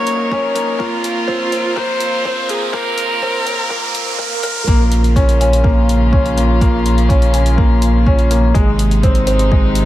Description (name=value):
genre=piano and strings electronica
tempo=124 BPM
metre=4/4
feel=straight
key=Bb minor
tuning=A4 = 440 Hz
part: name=warm viola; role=melody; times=0.0-4.2 s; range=F4 to Db5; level=-21 LUFS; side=right 1 dB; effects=digital delay
part: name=warm chamber string section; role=sustained chords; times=0.0-9.9 s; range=C3 to Bb4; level=-24 LUFS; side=left 2 dB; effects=none
part: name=felt-muted upright piano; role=riff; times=0.0-9.9 s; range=Ab3 to Bb4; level=-18 LUFS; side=left 1 dB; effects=digital delay
part: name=riser and swell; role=sound effects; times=0.0-4.7 s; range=none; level=-24 LUFS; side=right 2 dB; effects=none
part: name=electronic hi-hat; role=drums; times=0.1-9.9 s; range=none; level=-27 LUFS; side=left 1 dB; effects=none
part: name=electronic kick drum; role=drums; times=0.3-9.6 s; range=none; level=-15 LUFS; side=equal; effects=none
part: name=round analog bass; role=bass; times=4.7-9.9 s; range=Ab1 to Bb1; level=-14 LUFS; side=equal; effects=sidechain pumping
room=small room ambience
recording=high-pass filter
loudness=-12 LUFS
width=side -14 dB against mid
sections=0.0-4.7 A section; 4.7-9.9 B section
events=build-up 0.0-4.7; riser 0.0-4.7; filter sweep 0.0-4.7; swell 3.7-4.7; drop 4.7-9.9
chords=0.0 Gb; 0.8 Fsus4; 4.7 Bbm; 8.5 Ab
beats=0.32 | 0.81 1.29 1.77 2.26 | 2.74 3.23 3.71 4.19 | 4.68 5.16 5.64 6.13 | 6.61 7.10 7.58 8.06 | 8.55 9.03 9.52